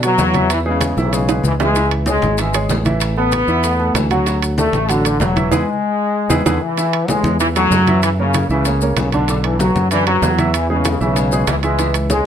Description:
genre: latin, salsa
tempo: 192 BPM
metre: 4/4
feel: straight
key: A major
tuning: A4 = 441 Hz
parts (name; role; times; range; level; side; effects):
- warm upright piano; accompaniment; 0.0-12.3 s; D3 to F#5; -21 LUFS; right 3 dB; none
- fingered electric bass; bass; 0.0-12.2 s; E1 to B2; -19 LUFS; equal; none
- bongos; percussion; 0.0-12.3 s; none; -29 LUFS; left 6 dB; none
- congas; percussion; 0.0-12.3 s; none; -24 LUFS; left 2 dB; none
- maracas; percussion; 0.0-12.3 s; none; -30 LUFS; left 7 dB; none
- timbales; percussion; 0.0-12.3 s; none; -24 LUFS; right 10 dB; none
- bright trombone section; melody; 0.1-12.3 s; C#3 to B3; -18 LUFS; left 2 dB; none
room: light reverb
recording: close, detailed microphones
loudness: -14 LUFS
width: side -9 dB against mid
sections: 0.0-6.8 A section; 6.8-12.3 A section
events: drum fill 0.8-1.8, 5.8-6.8; band accent 5.5-6.8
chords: 0.5 E; 1.8 C#m; 3.0 Asus2; 4.3 D; 5.5 E; 6.8 Amaj7; 8.0 F#7; 9.3 Bm; 10.5 E

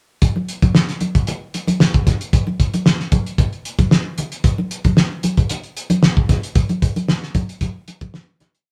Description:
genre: funk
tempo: 114 BPM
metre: 4/4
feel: straight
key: none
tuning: none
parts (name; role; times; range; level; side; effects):
- cloth-damped thuddy drum kit; drums; 0.2-8.7 s; hi-hat, kick drum, snare drum; -18 LUFS; equal; none
- congas; percussion; 0.2-8.5 s; none; -25 LUFS; equal; none
room: moderate studio reverb, RT60 0.6 s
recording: rough rehearsal-room recording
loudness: -18 LUFS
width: mono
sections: 0.2-8.7 breakdown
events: fade-out 6.6-8.7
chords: none

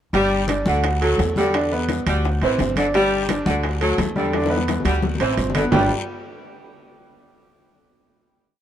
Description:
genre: latin, salsa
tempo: 172 BPM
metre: 4/4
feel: straight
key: G major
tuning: A4 = 438 Hz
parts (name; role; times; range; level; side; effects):
- bright saxophone section; second line; 0.1-5.8 s; D3 to G3; -24 LUFS; left 1 dB; none
- bright upright piano; accompaniment; 0.1-5.9 s; G3 to G5; -22 LUFS; right 2 dB; none
- upright bass; bass; 0.1-5.9 s; G1 to E2; -24 LUFS; equal; none
- bongos; percussion; 0.1-5.8 s; none; -30 LUFS; left 6 dB; none
- congas; percussion; 0.1-5.8 s; none; -27 LUFS; left 2 dB; none
- guiro; percussion; 0.1-5.8 s; none; -37 LUFS; left 6 dB; none
- timbales; percussion; 0.1-5.8 s; none; -30 LUFS; right 6 dB; none
room: light reverb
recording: worn, warbling old tape, cassette tape, warbly pitch drift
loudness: -18 LUFS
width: side -10 dB against mid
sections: 0.1-5.7 montuno (vamp); 5.7-7.1 final chord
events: drum fill 4.3-5.7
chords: 0.1 G5; 0.8 D; 1.5 Em7; 2.2 D7; 2.9 G5; 3.6 D; 4.3 Em7; 5.0 D7; 5.7 G5

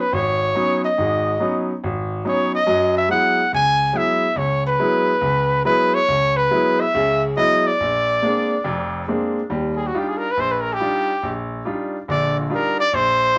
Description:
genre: jazz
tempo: 140 BPM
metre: 4/4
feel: swing 67% on 8ths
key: Eb major from 9.5 s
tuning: A4 = 440 Hz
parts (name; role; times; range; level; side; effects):
- warm trumpet; melody; 0.0-13.4 s; F4 to Ab5; -21 LUFS; equal; none
- clear grand piano; accompaniment; 0.1-13.4 s; F1 to F4; -24 LUFS; equal; none
room: moderate studio ambience, RT60 0.5 s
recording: band playing live in one room, nothing above 8.0 kHz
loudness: -20 LUFS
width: mono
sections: 0.0-9.5 A section; 9.5-13.4 B section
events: trumpet solo 9.5-13.4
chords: 0.0 Db9sus4; 2.7 Gb9sus4; 7.8 Bb9; 9.5 Ebmaj9

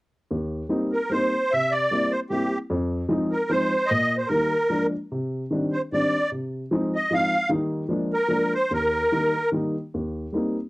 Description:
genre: musette waltz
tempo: 149 BPM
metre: 3/4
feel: rubato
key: Eb major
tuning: A4 = 440 Hz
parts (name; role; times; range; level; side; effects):
- dark upright piano; accompaniment; 0.3-10.6 s; Eb2 to E4; -25 LUFS; equal; cassette tape
- musette accordion; melody; 0.9-9.5 s; G4 to F5; -22 LUFS; equal; cassette tape
room: light reverb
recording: home recording on cassette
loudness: -22 LUFS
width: side -21 dB against mid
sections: 0.3-9.9 A section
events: none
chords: 0.3 Eb6; 1.5 C7; 2.7 Fm7; 3.9 Eb/Bb; 4.7 Bb7; 5.1 Cmadd9; 6.3 Fm7/C; 7.5 Eb; 7.9 Bb7; 8.7 Eb; 9.9 Eb6

